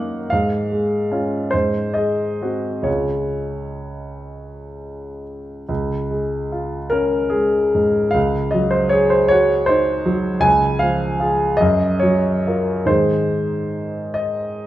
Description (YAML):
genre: classical, romantic nocturne for solo piano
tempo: 41-54 BPM (dotted quarters)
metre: 6/8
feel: rubato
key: Db major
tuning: A4 = 440 Hz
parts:
  - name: warm grand piano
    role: solo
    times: 0.0-14.7 s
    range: Db2 to Ab5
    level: -17 LUFS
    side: equal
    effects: none
room: moderate recital hall reverb, RT60 1.5 s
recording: recorded in a church or concert hall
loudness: -16 LUFS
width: side -14 dB against mid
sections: 0.0-5.7 A section; 5.7-14.7 A section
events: none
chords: 0.3 Db/Ab; 1.5 Ab7; 2.9 Db; 8.2 Ab7/Db; 10.4 Db; 11.6 Gbmaj7; 12.9 Ab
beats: | 0.32 1.53 | 2.87 4.27 | 5.69 6.94 | 8.16 9.32 | 10.44 11.61 | 12.88 14.16